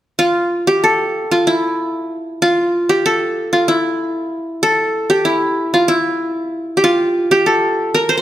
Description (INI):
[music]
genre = turkish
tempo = 190 BPM (eighths)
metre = 7/8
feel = straight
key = unclear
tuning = A4 = 440 Hz
[part]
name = qanun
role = melody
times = 0.2-8.2 s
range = E4 to C5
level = -14 LUFS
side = equal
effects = none
[sound]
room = moderate recital hall reverb, RT60 1.8 s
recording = none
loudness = -14 LUFS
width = side -13 dB against mid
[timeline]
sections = 0.2-8.2 A section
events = none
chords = none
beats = | 0.19 0.51 0.83 1.14 1.46 1.78 2.09 | 2.41 2.73 3.04 3.36 3.68 3.99 4.31 | 4.63 4.94 5.26 5.58 5.89 6.21 6.53 | 6.84 7.16 7.48 7.79 8.11